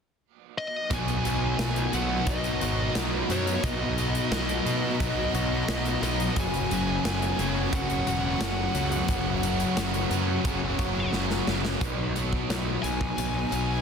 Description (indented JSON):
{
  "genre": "rock, shoegaze and dream pop",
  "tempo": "88 BPM",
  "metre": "4/4",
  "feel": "straight",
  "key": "B major",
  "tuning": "A4 = 440 Hz",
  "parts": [
    { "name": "fuzz lead guitar", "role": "melody", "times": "0.6-13.8 s", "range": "C#5 to G#5", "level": "-33 LUFS", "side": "left 3 dB", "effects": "distortion, tape echo" },
    { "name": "shimmering ambient pad", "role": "sustained chords", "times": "2.1-13.8 s", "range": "F#4 to C#6", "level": "-39 LUFS", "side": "equal", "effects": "chorus, built-in reverb" },
    { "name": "biting overdriven guitar", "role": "riff", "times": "0.9-13.8 s", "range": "F#2 to F#4", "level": "-32 LUFS", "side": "right 14 dB", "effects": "reverse reverb" },
    { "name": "distorted electric guitar", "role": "riff", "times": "0.9-11.8 s", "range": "F#2 to B3", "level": "-33 LUFS", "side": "right 2 dB", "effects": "distortion" },
    { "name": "thick fuzz guitar", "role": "riff", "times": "0.9-13.8 s", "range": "F#2 to B3", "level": "-32 LUFS", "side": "left 8 dB", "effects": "distortion, ensemble chorus" },
    { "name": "fuzz picked electric bass", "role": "bass", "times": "0.9-13.8 s", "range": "E1 to B2", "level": "-31 LUFS", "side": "right 1 dB", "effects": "overdrive" },
    { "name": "big rock drum kit", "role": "drums", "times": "0.9-13.7 s", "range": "hi-hat, kick drum, snare drum", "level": "-32 LUFS", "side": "equal", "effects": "none" },
    { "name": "direct-recorded clean electric guitar", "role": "arpeggios", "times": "2.3-13.8 s", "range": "F#3 to F#4", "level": "-38 LUFS", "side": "left 8 dB", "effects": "analog chorus, tape echo" }
  ],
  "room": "light reverb, small room ambience",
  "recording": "dense, heavily limited modern master",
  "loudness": "-24 LUFS",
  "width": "side -6 dB against mid",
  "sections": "0.9-11.8 A section; 11.8-13.8 B section",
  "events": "drum fill 11.1-11.8",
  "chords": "0.0 N.C.; 0.9 Bmaj7; 6.4 F#sus4; 11.8 Bmaj7"
}